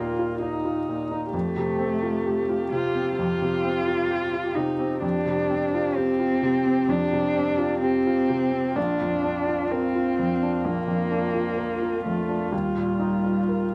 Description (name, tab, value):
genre	neoclassical piano and strings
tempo	64 BPM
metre	4/4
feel	rubato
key	unclear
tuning	A4 = 440 Hz
part	dark cello	second line	0.0-13.7 s	G3 to F4	-28 LUFS	equal	none
part	dark viola	accompaniment	0.0-13.7 s	Eb4 to G4	-32 LUFS	equal	none
part	felt-muted upright piano	accompaniment	0.0-13.7 s	Bb1 to Bb4	-30 LUFS	equal	none
room	light reverb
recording	none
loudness	-25 LUFS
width	mono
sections	0.0-13.7 A section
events	none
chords	0.0 Ebsus2; 1.3 Fsus2; 8.8 Bb; 12.5 Ebsus2